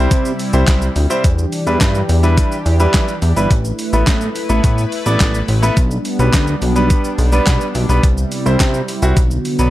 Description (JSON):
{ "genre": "dance-pop", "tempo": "106 BPM", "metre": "4/4", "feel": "straight", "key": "E minor", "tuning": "A4 = 440 Hz", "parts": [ { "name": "clear concert grand piano", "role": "accompaniment", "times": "0.0-9.7 s", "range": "F#3 to D5", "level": "-20 LUFS", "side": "equal", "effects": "sidechain pumping" }, { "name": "sweeping resonant pad", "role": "sustained chords", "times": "0.0-9.7 s", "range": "C3 to B4", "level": "-22 LUFS", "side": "equal", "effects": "chorus, sidechain pumping" }, { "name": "chorused synth bass", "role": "bass", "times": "0.0-9.7 s", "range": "G1 to E3", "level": "-15 LUFS", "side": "equal", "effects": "sidechain pumping" }, { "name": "clean 12-bit digital drum machine", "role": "drums", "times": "0.1-9.7 s", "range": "handclaps, hi-hat, kick drum, shaker, snare drum", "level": "-17 LUFS", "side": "equal", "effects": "overdrive" } ], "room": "digital ambience", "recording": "dry, gritty hardware recording", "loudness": "-13 LUFS", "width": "side -15 dB against mid", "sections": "0.0-9.7 A section", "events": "none", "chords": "0.0 C; 1.2 Em7; 3.5 Asus2; 5.8 G/B; 8.0 C; 9.2 Bm", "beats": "0.11 0.68 | 1.24 1.81 2.37 2.94 | 3.51 4.07 4.64 5.20 | 5.77 6.34 6.90 7.47 | 8.03 8.60 9.17" }